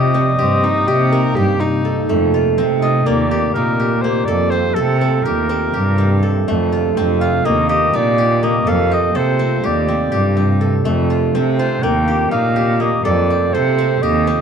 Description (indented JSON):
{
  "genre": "contemporary instrumental, chamber music in an uneven meter",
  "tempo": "247 BPM (eighths)",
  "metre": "9/8",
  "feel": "straight",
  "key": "unclear",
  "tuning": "A4 = 439 Hz",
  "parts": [
    { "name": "warm oboe", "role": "melody", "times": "0.0-14.4 s", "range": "A4 to G5", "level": "-19 LUFS", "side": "equal", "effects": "none" },
    { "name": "deep dark ambient pad", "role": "sustained chords", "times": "0.0-14.4 s", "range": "C3 to G4", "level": "-22 LUFS", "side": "left 2 dB", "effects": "chorus, built-in reverb" },
    { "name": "steel-string zither", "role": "arpeggios", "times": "0.0-14.4 s", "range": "A3 to A4", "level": "-19 LUFS", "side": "right 1 dB", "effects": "none" },
    { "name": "rich cello", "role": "bass", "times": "0.0-14.4 s", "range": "Eb2 to C3", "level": "-18 LUFS", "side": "right 2 dB", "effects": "none" },
    { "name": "warm viola", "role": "second line", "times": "0.4-2.1 s", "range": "C4 to Bb4", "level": "-22 LUFS", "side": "right 1 dB", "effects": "none" }
  ],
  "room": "light reverb",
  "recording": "dark, warm production",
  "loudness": "-14 LUFS",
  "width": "side -7 dB against mid",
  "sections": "0.0-2.1 A section; 2.1-14.4 B section",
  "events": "none",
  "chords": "0.0 Cm7; 2.1 F; 3.1 Eb; 4.3 F; 5.3 Cmadd9; 6.5 F; 7.4 Eb; 8.7 F; 9.6 Cmadd9; 10.9 F; 11.8 Eb; 13.0 F"
}